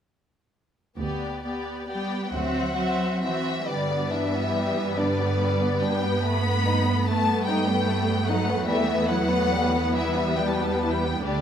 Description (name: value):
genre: classical, slow romantic movement for string orchestra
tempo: 42-50 BPM (dotted quarters)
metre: 6/8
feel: rubato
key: G major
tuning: A4 = 439 Hz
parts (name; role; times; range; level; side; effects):
- rich symphonic violin section; melody; 1.0-11.4 s; D5 to B5; -29 LUFS; left 4 dB; none
- warm chamber violin section; second line; 1.0-11.4 s; G3 to B4; -28 LUFS; left 2 dB; none
- warm symphonic viola section; accompaniment; 1.0-11.4 s; G3 to D4; -28 LUFS; equal; none
- rich chamber cello section; bass; 1.0-11.4 s; D2 to B3; -30 LUFS; right 3 dB; none
- warm chamber double bass section; bass; 1.0-11.4 s; D2 to G2; -29 LUFS; right 2 dB; none
room: moderate recital hall reverb, RT60 1.3 s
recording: none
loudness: -22 LUFS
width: side -8 dB against mid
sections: 1.0-3.7 A section; 3.7-11.4 B section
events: none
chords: 1.0 G/D; 2.3 D9; 3.7 G; 6.2 B7/G; 8.7 Em